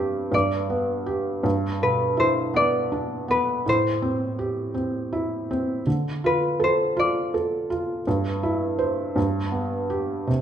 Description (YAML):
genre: children's music, lullaby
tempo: 54 BPM (dotted quarters)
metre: 6/8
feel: straight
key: unclear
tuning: A4 = 438 Hz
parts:
  - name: concert harp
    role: melody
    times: 0.0-9.5 s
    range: B4 to D5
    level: -23 LUFS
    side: left 2 dB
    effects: none
  - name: felt-muted upright piano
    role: accompaniment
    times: 0.0-10.4 s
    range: G2 to C5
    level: -23 LUFS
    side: right 1 dB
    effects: none
room: moderate recital hall reverb, RT60 1.4 s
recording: minimal, uncompressed stereo recording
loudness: -22 LUFS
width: side -9 dB against mid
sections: 0.0-10.3 A section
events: none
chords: 0.3 G; 1.4 G6; 3.7 Am7; 5.9 Dm; 8.1 C/G; 9.2 G